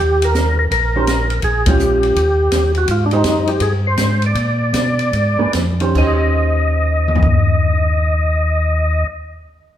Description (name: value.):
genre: soul jazz organ trio.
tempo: 141-166 BPM.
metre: 4/4.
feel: swing 65% on 8ths.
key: Eb mixolydian.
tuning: A4 = 441 Hz.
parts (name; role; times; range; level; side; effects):
overdriven tonewheel organ; melody; 0.0-9.1 s; D4 to Eb5; -18 LUFS; equal; slow rotary speaker, chorus vibrato.
mellow tonewheel organ; bass; 0.0-9.0 s; Bb1 to Cb3; -17 LUFS; equal; slow rotary speaker.
open jazz drum kit; drums; 0.2-7.4 s; crash cymbal, hi-hat, kick drum, ride cymbal, snare drum, toms; -20 LUFS; left 1 dB; none.
vintage hollow-body jazz guitar; accompaniment; 1.0-9.1 s; Eb3 to C5; -22 LUFS; right 3 dB; none.
room: wet large studio reverb, RT60 1.3 s.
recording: heard from further back in the room.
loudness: -13 LUFS.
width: side -11 dB against mid.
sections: 0.0-2.9 A section; 2.9-6.0 B section; 6.0-9.4 C section.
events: band accent 1.6; slowing down 2.9-6.0.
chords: 0.0 Eb; 1.4 Bbm7; 2.2 Eb; 2.9 Abmaj7; 4.4 Bb7b9; 6.0 Eb6.